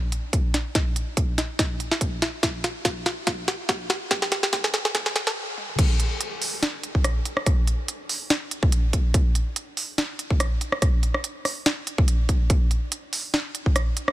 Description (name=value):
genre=future bass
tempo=143 BPM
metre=4/4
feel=swing 54% on 16ths, half-time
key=none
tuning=none
part: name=trap drum kit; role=drums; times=0.1-14.1 s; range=crash cymbal, hi-hat, rim click, snare drum, toms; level=-25 LUFS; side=equal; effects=soft clipping on snare
part: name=electronic kick drum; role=drums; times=0.3-13.7 s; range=none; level=-22 LUFS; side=equal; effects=none
room=little or no reverb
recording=dense, heavily limited modern master, high-pass filter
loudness=-22 LUFS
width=side -16 dB against mid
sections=0.0-5.8 A section; 5.8-14.1 B section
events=build-up 0.0-5.8; drum fill 0.0-5.4, 5.6; filter sweep 0.0-5.8; stop 5.4-5.8; drop 5.8-14.1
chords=none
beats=0.33 | 0.75 1.17 1.59 2.01 | 2.43 2.85 3.27 3.69 | 4.11 4.53 4.95 5.37 | 5.79 6.21 6.62 7.04 | 7.46 7.88 8.30 8.72 | 9.14 9.56 9.98 10.40 | 10.82 11.24 11.66 12.08 | 12.50 12.92 13.34 13.76